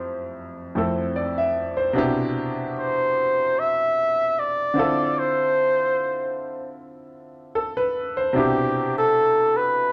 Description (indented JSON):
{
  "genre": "soul",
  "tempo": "75 BPM",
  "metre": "4/4",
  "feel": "swing 54% on 16ths",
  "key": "C major",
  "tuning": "A4 = 440 Hz",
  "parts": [
    { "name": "warm flugelhorn", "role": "melody", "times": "0.0-9.9 s", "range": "G4 to E5", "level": "-23 LUFS", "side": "equal", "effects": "none" },
    { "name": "bright grand piano", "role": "accompaniment", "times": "0.0-9.9 s", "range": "F2 to E5", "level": "-27 LUFS", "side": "equal", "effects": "none" }
  ],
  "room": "moderate large studio reverb, RT60 0.9 s",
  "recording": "band playing live in one room",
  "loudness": "-22 LUFS",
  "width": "mono",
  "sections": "0.0-8.3 A section; 8.3-9.9 B section",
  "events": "none",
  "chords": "0.0 Fmaj9; 2.0 Cmaj7; 4.8 Dm7; 8.3 Cmaj7",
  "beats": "0.37 1.17 | 1.97 2.77 3.57 4.36 | 5.16 5.96 6.76 7.55 | 8.35 9.15"
}